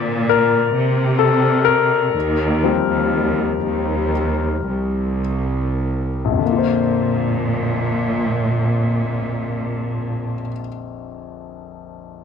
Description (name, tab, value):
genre	pop ballad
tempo	49-68 BPM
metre	4/4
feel	straight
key	Bb major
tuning	A4 = 440 Hz
part	warm concert grand piano	accompaniment	0.0-12.2 s	Bb1 to D5	-20 LUFS	left 8 dB	none
part	warm studio cello section	bass	0.0-10.5 s	C2 to C3	-20 LUFS	right 2 dB	none
room	light reverb, small room ambience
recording	1960s-style stereo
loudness	-17 LUFS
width	side -7 dB against mid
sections	0.0-6.4 A section; 6.4-11.3 B section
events	slowing down 0.0-6.4; grand piano solo 0.0-6.4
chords	0.0 Bbadd9; 2.2 Eb6; 6.4 Bbadd9